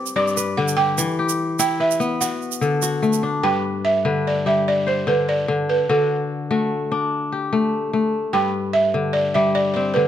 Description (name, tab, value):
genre	west african traditional, West African string and xylophone music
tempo	98 BPM (dotted quarters)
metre	12/8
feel	straight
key	G major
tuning	A4 = 440 Hz
part	balafon	melody	0.0-10.1 s	A4 to G5	-20 LUFS	right 3 dB	none
part	kora	arpeggios	0.0-10.1 s	G2 to D5	-21 LUFS	left 3 dB	none
part	tube shaker	percussion	0.1-3.2 s	none	-27 LUFS	right 12 dB	none
room	light reverb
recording	close, detailed microphones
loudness	-18 LUFS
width	side -10 dB against mid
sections	0.0-3.4 A section; 3.4-10.1 B section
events	none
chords	0.0 G; 1.0 Em; 2.2 D; 3.4 G; 5.9 D; 8.3 G